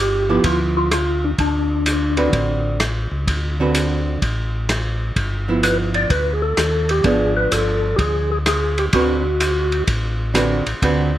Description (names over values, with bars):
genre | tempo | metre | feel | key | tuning
soul jazz organ trio | 127 BPM | 4/4 | swing 67% on 8ths | unclear | A4 = 441 Hz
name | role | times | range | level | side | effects
percussive tonewheel organ | melody | 0.0-2.3, 5.6-9.8 s | D4 to D5 | -20 LUFS | left 1 dB | fast rotary speaker
mellow tonewheel organ | bass | 0.0-11.2 s | G1 to Eb2 | -22 LUFS | equal | slow rotary speaker
archtop guitar, miked and amplified | accompaniment | 0.3-11.1 s | D3 to B4 | -20 LUFS | right 2 dB | none
vintage drum kit | drums | 0.4-11.0 s | hi-hat, kick drum, ride cymbal, rim click | -22 LUFS | equal | none
room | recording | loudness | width
light reverb | none | -16 LUFS | side -13 dB against mid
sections
0.0-11.2 A section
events
none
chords
0.0 G6; 1.4 D6; 5.2 G13; 7.0 G#dim7; 8.9 D6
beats
0.45 0.92 | 1.39 1.86 2.33 2.80 | 3.27 3.75 4.22 4.69 | 5.16 5.63 6.10 6.57 | 7.05 7.52 7.99 8.46 | 8.93 9.40 9.88 10.35 | 10.82